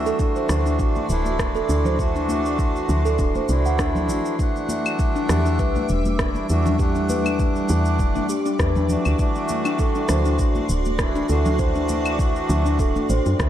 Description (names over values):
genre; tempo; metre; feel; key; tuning
organic downtempo; 100 BPM; 4/4; swing 55% on 16ths; E minor; A4 = 440 Hz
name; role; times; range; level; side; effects
hand-pumped harmonium; accompaniment; 0.0-13.5 s; E3 to F#5; -26 LUFS; equal; sidechain pumping, ping-pong delay
granular cloud pad; sustained chords; 0.0-13.5 s; G3 to D6; -30 LUFS; right 2 dB; built-in reverb, sidechain pumping
woody FM bass; bass; 0.0-13.5 s; D1 to F#2; -22 LUFS; equal; none
quartz singing bowl; texture; 0.0-4.4 s; none; barely audible; none; none
steel tongue drum; arpeggios; 0.1-13.5 s; D4 to F#5; -25 LUFS; left 1 dB; ping-pong delay
electronic shaker, rim click and claves; drums; 0.1-13.5 s; none; -30 LUFS; left 1 dB; none
electronic kick drum; drums; 0.2-13.5 s; none; -23 LUFS; equal; none
congas; percussion; 0.5-13.1 s; none; -31 LUFS; equal; none
room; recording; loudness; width
light reverb, studio reverb; dark, warm production; -18 LUFS; side -11 dB against mid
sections
0.0-4.4 A section; 4.4-13.5 B section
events
none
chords
0.0 D7; 4.4 Em7; 9.2 D7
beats
0.19 0.79 1.39 | 1.99 2.59 3.19 3.79 | 4.39 4.99 5.59 6.19 | 6.79 7.39 7.99 8.59 | 9.19 9.79 10.39 10.99 | 11.59 12.19 12.79 13.39